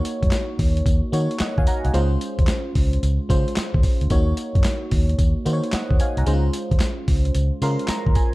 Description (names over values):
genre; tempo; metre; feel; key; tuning
R&B, new jack swing; 111 BPM; 4/4; swing 66% on 16ths; Eb dorian; A4 = 440 Hz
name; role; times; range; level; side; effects
FM electric piano; accompaniment; 0.0-8.3 s; Ab3 to C6; -26 LUFS; equal; chorus
boom bap sampler-style drum kit; drums; 0.0-8.3 s; handclaps, hi-hat, kick drum, snare drum, tambourine; -21 LUFS; equal; none
vintage muted fingered electric bass; bass; 0.2-8.1 s; C2 to Eb3; -21 LUFS; equal; none
room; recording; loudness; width
little or no reverb; dark, warm production; -18 LUFS; side -20 dB against mid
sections
0.0-8.3 A section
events
FM electric piano fill 7.3-8.3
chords
0.0 Ebm7; 1.9 Dbmaj7; 4.1 Ebm7; 6.3 Dbmaj7